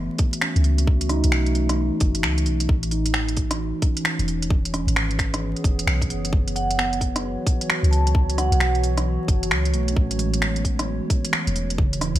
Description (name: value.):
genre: future garage.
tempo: 132 BPM.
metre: 4/4.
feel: swing 63% on 16ths.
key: F# dorian.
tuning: A4 = 441 Hz.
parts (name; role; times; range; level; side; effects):
mellow tine electric piano; accompaniment; 0.0-12.2 s; C#3 to D#4; -31 LUFS; right 2 dB; sidechain pumping, ping-pong delay.
warbly tape-like pad; sustained chords; 0.0-12.2 s; E3 to C#5; -28 LUFS; equal; chorus, built-in reverb, sidechain pumping.
soft 808-style bass; bass; 0.0-12.2 s; E1 to C#2; -23 LUFS; equal; tube saturation, sidechain pumping.
electronic kick drum; drums; 0.2-11.9 s; none; -21 LUFS; equal; small room ambience.
organic electronic drum kit; drums; 0.2-12.2 s; finger snaps, hi-hat, rim click; -25 LUFS; equal; small room ambience.
vibraphone with medium mallets; melody; 6.6-8.7 s; F#5 to A5; -28 LUFS; right 2 dB; ping-pong delay.
room: moderate recital hall reverb, RT60 1.5 s.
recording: vinyl crackle.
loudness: -19 LUFS.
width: side -14 dB against mid.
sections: 0.0-12.2 A section.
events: none.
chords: 0.0 F#m7; 2.7 A6; 4.5 E6; 6.3 F#7(no3); 10.0 A6.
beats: 0.42 | 0.87 1.33 1.78 2.24 | 2.69 3.15 3.60 4.05 | 4.51 4.96 5.42 5.87 | 6.33 6.78 7.24 7.69 | 8.15 8.60 9.05 9.51 | 9.96 10.42 10.87 11.33 | 11.78.